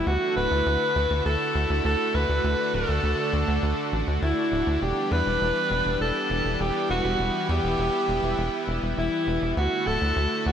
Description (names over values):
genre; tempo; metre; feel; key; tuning
synthwave; 101 BPM; 4/4; straight; unclear; A4 = 440 Hz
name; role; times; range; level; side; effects
breathy alto saxophone; melody; 0.0-10.5 s; E4 to B4; -25 LUFS; equal; slapback echo, ping-pong delay
lush unison pad; sustained chords; 0.0-10.5 s; D3 to F#4; -28 LUFS; equal; chorus
tight sequencer bass; bass; 0.0-10.5 s; D1 to E2; -26 LUFS; equal; none
room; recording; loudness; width
wet concert hall reverb, RT60 2.1 s; big arena sound; -22 LUFS; side -8 dB against mid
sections
0.0-10.5 A section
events
none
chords
0.1 Dadd9; 4.8 Em7; 9.6 Dadd9